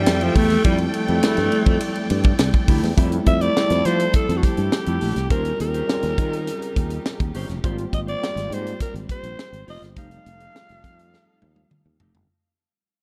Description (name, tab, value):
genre	polished 1980s jazz-funk pop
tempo	103 BPM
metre	4/4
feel	straight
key	F major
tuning	A4 = 438 Hz
part	breathy alto saxophone	melody	0.0-11.7 s	F3 to F5	-27 LUFS	equal	digital delay
part	tine electric piano	accompaniment	0.0-12.3 s	G3 to F4	-30 LUFS	equal	overdrive, ensemble chorus
part	warm studio string section	sustained chords	0.0-12.3 s	Db3 to G5	-34 LUFS	equal	none
part	sustaining fretless electric bass	bass	0.0-12.3 s	F1 to F3	-26 LUFS	equal	none
part	tight funk drum kit	drums	0.1-12.3 s	hi-hat, kick drum, ride cymbal, snare drum, toms	-23 LUFS	equal	none
part	mellow electric guitar	riff	0.2-12.2 s	A3 to C5	-31 LUFS	equal	subtle chorus
room	light reverb, small room ambience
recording	dark, warm production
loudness	-21 LUFS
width	mono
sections	0.0-3.0 A section; 3.0-12.3 B section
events	fade-out 3.0-12.3; drum fill 11.1-12.3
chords	0.0 Fmaj9; 5.3 Eb13; 7.6 Abmaj13; 10.0 F9